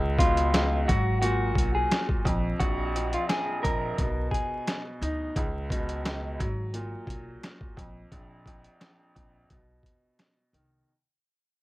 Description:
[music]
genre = hip hop, boom-bap hip-hop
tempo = 87 BPM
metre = 4/4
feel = swing 55% on 16ths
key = unclear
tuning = A4 = 440 Hz
[part]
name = clear upright piano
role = accompaniment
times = 0.0-10.9 s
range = Bb1 to D#4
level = -32 LUFS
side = equal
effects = cassette tape, high-pass filter, low-pass filter
[part]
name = upright bass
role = bass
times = 0.0-10.8 s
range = Ab1 to D2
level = -30 LUFS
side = equal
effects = transformer saturation
[part]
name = clean electric guitar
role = melody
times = 0.2-4.8 s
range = F4 to Bb4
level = -29 LUFS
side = left 1 dB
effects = high-pass filter, low-pass filter, digital delay
[part]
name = boom bap sampler-style drum kit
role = drums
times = 0.2-10.7 s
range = hi-hat, kick drum, snare drum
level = -29 LUFS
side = equal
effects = none
[sound]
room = little or no reverb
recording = worn, warbling old tape, cassette tape, vinyl crackle, warbly pitch drift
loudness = -25 LUFS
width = side -18 dB against mid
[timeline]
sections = 0.0-10.9 A section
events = fade-out 0.0-10.9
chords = 0.0 Db7; 0.9 Abm9; 2.3 Gbmaj7/Bb; 4.0 B; 5.4 Bsus2/C#; 6.4 Abm9; 7.8 Bb5; 9.5 B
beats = 0.53 1.22 1.91 | 2.60 3.29 3.98 4.67 | 5.36 6.05 6.74 7.43 | 8.12 8.81 9.50 10.19

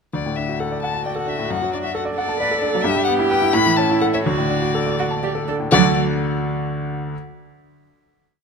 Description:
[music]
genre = quick classical-period movement for piano trio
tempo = 80-90 BPM (dotted quarters)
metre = 6/8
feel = rubato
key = D major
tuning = A4 = 439 Hz
[part]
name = warm violin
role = melody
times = 0.1-6.0 s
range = D5 to B5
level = -23 LUFS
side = left 9 dB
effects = none
[part]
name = bright grand piano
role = accompaniment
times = 0.1-7.2 s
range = D2 to A5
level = -21 LUFS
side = left 1 dB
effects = none
[part]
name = warm cello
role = second line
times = 0.8-6.0 s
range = F#3 to B4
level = -22 LUFS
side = right 8 dB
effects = none
[sound]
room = moderate concert hall reverb, RT60 2.3 s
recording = close, detailed microphones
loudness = -17 LUFS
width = side -5 dB against mid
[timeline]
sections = 0.1-5.7 A section; 5.7-7.1 final chord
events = none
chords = 0.1 D; 1.5 D/F#; 2.8 Em/G; 3.5 A; 4.3 D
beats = | 0.14 0.83 | 1.51 2.17 | 2.84 3.54 | 4.25 4.99 | 5.72 6.43

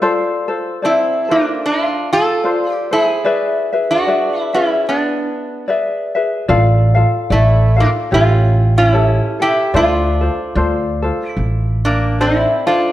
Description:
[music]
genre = Hawaiian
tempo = 74 BPM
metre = 4/4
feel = swing 58% on 8ths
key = D minor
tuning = A4 = 440 Hz
[part]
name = tenor ukulele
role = accompaniment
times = 0.0-12.9 s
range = E4 to F5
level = -18 LUFS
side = left 2 dB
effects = none
[part]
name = metal-body resonator slide guitar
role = melody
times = 0.8-12.9 s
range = A3 to A4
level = -16 LUFS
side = right 1 dB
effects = none
[part]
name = upright bass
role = bass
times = 6.5-12.4 s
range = A1 to D2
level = -14 LUFS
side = right 1 dB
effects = none
[sound]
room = moderate scoring stage reverb, RT60 1.6 s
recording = none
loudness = -13 LUFS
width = side -14 dB against mid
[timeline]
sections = 0.0-12.9 A section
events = none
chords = 0.0 Dm7; 3.3 E7; 6.5 Dm/A; 8.1 A7; 9.7 Dm7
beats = | 0.02 0.83 1.64 2.44 | 3.25 4.06 4.87 5.68 | 6.49 7.30 8.12 8.93 | 9.74 10.56 11.38 12.19

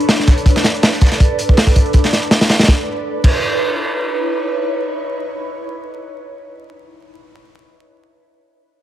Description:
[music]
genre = drum and bass, jungle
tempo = 162 BPM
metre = 4/4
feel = swing 54% on 16ths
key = C# phrygian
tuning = A4 = 441 Hz
[part]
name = ethereal airy pad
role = sustained chords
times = 0.0-6.4 s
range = D4 to D5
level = -21 LUFS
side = right 1 dB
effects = ensemble chorus, built-in reverb, phaser
[part]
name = dusty soul sampler-style drum kit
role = drums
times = 0.0-2.7 s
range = hi-hat, snare drum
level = -26 LUFS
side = right 1 dB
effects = high-pass filter on snare, high-pass filter on hats
[part]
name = crunchy breakbeat drum kit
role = drums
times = 0.1-3.4 s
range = crash cymbal, hi-hat, kick drum, snare drum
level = -13 LUFS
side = equal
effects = none
[sound]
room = light reverb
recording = vinyl crackle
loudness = -12 LUFS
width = side -12 dB against mid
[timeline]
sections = 0.0-2.7 A section; 2.7-5.6 B section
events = none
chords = 0.0 Bm7; 2.7 C#m9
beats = 0.09 0.46 0.83 | 1.20 1.57 1.94 2.31 | 2.68 3.05 3.42 3.79 | 4.17 4.54 4.91 5.28

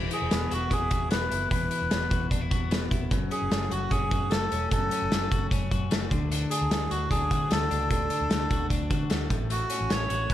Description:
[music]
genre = jangly indie pop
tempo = 150 BPM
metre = 4/4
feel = straight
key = E mixolydian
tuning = A4 = 443 Hz
[part]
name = twelve-string electric guitar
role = arpeggios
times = 0.0-10.3 s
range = F#2 to F#4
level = -33 LUFS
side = left 3 dB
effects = spring reverb, slapback echo
[part]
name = vintage muted fingered electric bass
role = bass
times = 0.0-10.3 s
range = E1 to D3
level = -32 LUFS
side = equal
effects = none
[part]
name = melodica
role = melody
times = 0.1-10.3 s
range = F#4 to C#5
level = -29 LUFS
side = equal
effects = slapback echo
[part]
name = loose indie drum kit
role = drums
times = 0.1-10.3 s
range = hi-hat, kick drum, snare drum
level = -28 LUFS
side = equal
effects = none
[sound]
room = light reverb, small room ambience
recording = none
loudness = -24 LUFS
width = side -12 dB against mid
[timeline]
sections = 0.0-10.3 A section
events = none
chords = 0.0 Eadd9; 3.1 F#m; 6.1 D; 9.3 A6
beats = 0.31 0.71 1.11 | 1.51 1.91 2.31 2.71 | 3.11 3.51 3.91 4.31 | 4.71 5.11 5.51 5.91 | 6.31 6.71 7.11 7.51 | 7.91 8.31 8.71 9.11 | 9.51 9.90 10.30

